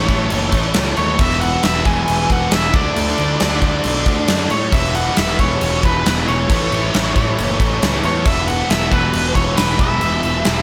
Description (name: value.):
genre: hard rock.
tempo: 136 BPM.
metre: 4/4.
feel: straight.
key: unclear.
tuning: A4 = 440 Hz.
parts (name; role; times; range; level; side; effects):
nasal lead guitar with a parked wah; melody; 0.0-10.6 s; B4 to G#5; -23 LUFS; equal; overdrive, slapback echo.
overdriven electric guitar; riff; 0.0-10.6 s; E2 to D4; -29 LUFS; equal; none.
sludgy distorted guitar; riff; 0.0-10.6 s; E2 to D4; -28 LUFS; equal; none.
tight distorted guitar; riff; 0.0-10.6 s; E2 to D4; -29 LUFS; equal; none.
fuzz picked electric bass; bass; 0.0-10.6 s; E1 to A2; -24 LUFS; equal; overdrive.
huge arena drum kit; drums; 0.1-10.6 s; crash cymbal, kick drum, snare drum; -20 LUFS; equal; none.
room: moderate lush hall reverb, RT60 1.8 s, studio reverb.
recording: big arena sound.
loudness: -16 LUFS.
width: mono.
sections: 0.0-10.6 A section.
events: none.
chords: 0.0 A; 1.2 E; 2.7 D5; 4.7 E5; 6.5 A; 8.3 E5.